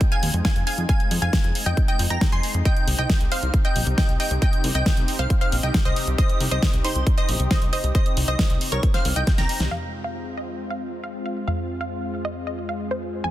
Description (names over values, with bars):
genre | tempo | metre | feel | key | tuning
uplifting trance | 136 BPM | 4/4 | straight | F minor | A4 = 440 Hz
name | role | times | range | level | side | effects
lush unison pad | sustained chords | 0.0-13.3 s | C3 to G4 | -32 LUFS | left 1 dB | chorus, sidechain pumping
big-room dance drum kit | drums | 0.0-9.7 s | hi-hat, snare drum | -27 LUFS | equal | none
electronic kick drum | drums | 0.0-9.4 s | none | -21 LUFS | equal | none
wide unison pluck | melody | 0.1-13.3 s | Eb4 to C6 | -29 LUFS | right 1 dB | sidechain pumping, tape echo
plucky unison lead | second line | 0.1-9.6 s | C6 to C7 | -32 LUFS | equal | phaser, cassette tape, sidechain pumping, tape echo
plucky analog bass | bass | 0.2-13.3 s | Bb1 to F2 | -25 LUFS | equal | sidechain pumping
room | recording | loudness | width
little or no reverb | dense, heavily limited modern master | -20 LUFS | side -14 dB against mid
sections
0.0-9.7 A section; 9.7-13.3 B section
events
drop 0.0-9.7; drum fill 9.3-9.7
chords
0.0 Fm; 2.7 Cm; 9.7 Fm